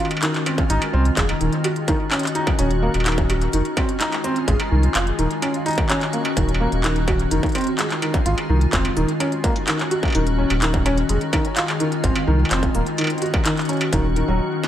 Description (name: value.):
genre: IDM.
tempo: 127 BPM.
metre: 4/4.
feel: straight.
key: unclear.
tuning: A4 = 440 Hz.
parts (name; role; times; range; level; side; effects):
icy glass pad; sustained chords; 0.0-14.7 s; Eb3 to Gb4; -25 LUFS; left 2 dB; chorus, built-in reverb.
felt-muted upright piano; arpeggios; 0.0-14.4 s; Eb3 to Gb4; -23 LUFS; right 1 dB; dub echo.
industrial drum kit; drums; 0.0-14.7 s; handclaps, hi-hat, snare drum, struck metal; -25 LUFS; equal; studio reverb, analog delay.
electronic kick drum; drums; 0.6-14.0 s; none; -23 LUFS; equal; distortion, studio reverb.
warm sub bass; bass; 0.7-14.4 s; Eb1 to C2; -20 LUFS; equal; tube saturation.
room: light reverb.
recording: echo-heavy mix.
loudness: -18 LUFS.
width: side -11 dB against mid.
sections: 0.0-14.7 A section.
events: break 14.4.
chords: 0.0 Fm7; 1.4 Ebm7; 3.5 Fm7; 5.2 Ebm7; 7.3 Fm7; 9.0 Ebm7; 11.1 Fm7; 12.7 Ebm7.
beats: 0.23 0.70 1.17 | 1.64 2.12 2.59 3.06 | 3.53 4.01 4.48 4.95 | 5.42 5.90 6.37 6.84 | 7.31 7.79 8.26 8.73 | 9.20 9.68 10.15 10.62 | 11.09 11.56 12.04 12.51 | 12.98 13.46 13.93 14.40.